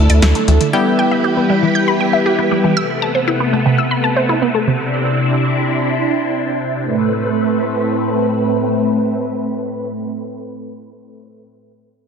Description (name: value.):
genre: synth-pop.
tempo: 118 BPM.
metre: 4/4.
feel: straight.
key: A minor.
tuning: A4 = 438 Hz.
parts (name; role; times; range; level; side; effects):
funky polysynth comp; accompaniment; 0.0-2.7 s; G3 to A4; -17 LUFS; left 1 dB; chorus, low-pass filter.
phased string machine; sustained chords; 0.0-11.3 s; A2 to B4; -17 LUFS; equal; ensemble chorus, phaser, low-pass filter.
resonant blip pluck; arpeggios; 0.0-4.8 s; C3 to G6; -17 LUFS; right 1 dB; phaser, low-pass filter, ping-pong delay.
round analog bass; bass; 0.0-0.6 s; D2; -10 LUFS; equal; none.
electro analog drum machine; drums; 0.1-0.7 s; hi-hat, snare drum; -21 LUFS; left 1 dB; none.
room: moderate plate reverb, RT60 2.5 s.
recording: dense, heavily limited modern master.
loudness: -14 LUFS.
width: side -6 dB against mid.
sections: 0.0-6.8 A section; 6.8-10.9 B section.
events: none.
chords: 0.0 Dsus2; 0.7 Em; 2.8 Amadd9; 4.8 Cadd9; 6.8 Amadd9.